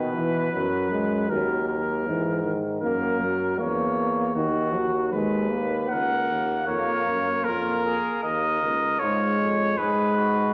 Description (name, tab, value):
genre	classical, imitative canzona for brass ensemble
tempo	78 BPM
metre	4/4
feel	straight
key	B major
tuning	A4 = 442 Hz
part	clear flugelhorn	second line	0.0-10.5 s	E#4 to C#5	-32 LUFS	equal	none
part	mellow trombone	accompaniment	0.0-10.5 s	D#3 to A#3	-30 LUFS	equal	none
part	warm bass trombone	bass	0.0-10.5 s	C#2 to B2	-31 LUFS	equal	none
part	warm trumpet	melody	5.9-10.5 s	A#4 to F#5	-26 LUFS	equal	none
room	wet recital hall reverb, RT60 1.5 s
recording	none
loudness	-25 LUFS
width	mono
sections	0.0-10.5 A section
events	none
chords	0.0 B5; 1.3 D#m; 2.8 F#; 4.4 B/D#; 5.9 F#/C#; 7.4 A#m/E#; 9.0 C#